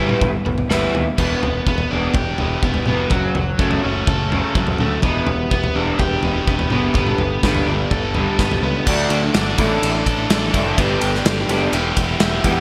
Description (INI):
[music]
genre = indie rock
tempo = 125 BPM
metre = 4/4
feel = straight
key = unclear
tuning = A4 = 440 Hz
[part]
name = overdriven electric guitar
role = riff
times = 0.0-12.6 s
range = E3 to A4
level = -24 LUFS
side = equal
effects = subtle chorus
[part]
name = raw garage guitar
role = riff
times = 0.0-12.6 s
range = E2 to B4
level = -26 LUFS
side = equal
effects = overdrive, analog chorus, delay
[part]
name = modern bright picked electric bass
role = bass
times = 0.0-12.6 s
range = E1 to E2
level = -26 LUFS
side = equal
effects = none
[part]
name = loose indie drum kit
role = drums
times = 0.1-12.6 s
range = crash cymbal, kick drum, ride cymbal, snare drum, toms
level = -23 LUFS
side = equal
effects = gated reverb
[part]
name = mellow tonewheel organ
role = sustained chords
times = 5.1-12.6 s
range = D4 to D6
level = -31 LUFS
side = equal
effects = none
[sound]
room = moderate lush hall reverb, RT60 2.0 s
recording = bright 1980s-style digital production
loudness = -18 LUFS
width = mono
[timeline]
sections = 0.0-1.2 A section; 1.2-8.9 B section; 8.9-12.6 C section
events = none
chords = 0.0 Em/G; 1.2 Em7; 3.1 F#m; 5.0 Em7; 7.0 Gadd9; 8.9 D; 9.6 Asus4; 10.8 Gadd9; 11.7 Emadd9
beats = 0.21 0.69 | 1.18 1.66 2.14 2.63 | 3.11 3.59 4.07 4.55 | 5.04 5.52 6.00 6.48 | 6.96 7.44 7.92 8.39 | 8.87 9.35 9.83 10.30 | 10.78 11.25 11.73 12.20